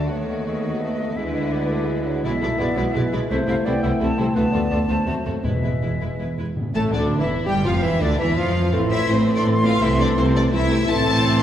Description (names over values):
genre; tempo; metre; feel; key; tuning
classical, dramatic, fast romantic movement for symphony orchestra; 167 BPM; 3/4; rubato; A minor; A4 = 441 Hz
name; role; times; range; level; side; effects
warm studio violin section; melody; 0.0-11.4 s; B4 to A5; -29 LUFS; left 3 dB; none
bright concert flute; second line; 0.0-11.4 s; D5 to C6; -29 LUFS; left 1 dB; none
dark clarinet; second line; 0.0-11.4 s; D4 to E5; -30 LUFS; left 3 dB; none
warm symphonic violin section; second line; 0.0-11.4 s; C4 to A4; -32 LUFS; left 4 dB; none
mellow bassoon; accompaniment; 0.0-11.4 s; D3 to C4; -30 LUFS; right 2 dB; none
rich studio viola section; accompaniment; 0.0-11.4 s; D3 to C4; -28 LUFS; right 1 dB; none
mellow French horn section; sustained chords; 0.0-11.4 s; D3 to E4; -26 LUFS; equal; none
rich symphonic cello section; bass; 0.0-11.4 s; D2 to D#3; -25 LUFS; right 1 dB; none
rich symphonic double bass section; bass; 0.0-11.4 s; E1 to D#2; -26 LUFS; right 1 dB; none
timpani; percussion; 5.4-7.1 s; E2 to A2; -27 LUFS; equal; none
room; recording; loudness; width
wet recital hall reverb, RT60 1.7 s; recorded in a church or concert hall; -18 LUFS; side -10 dB against mid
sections
0.0-6.6 A section; 6.6-11.4 B section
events
none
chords
0.1 B7/D#; 1.2 E7/D; 2.2 E7/B; 3.3 Am/C; 4.4 Bm7b5/D; 5.1 D#dim7; 5.4 E; 6.6 A5; 7.7 Dmadd9/E; 8.7 Am; 9.8 Am/C; 10.9 Am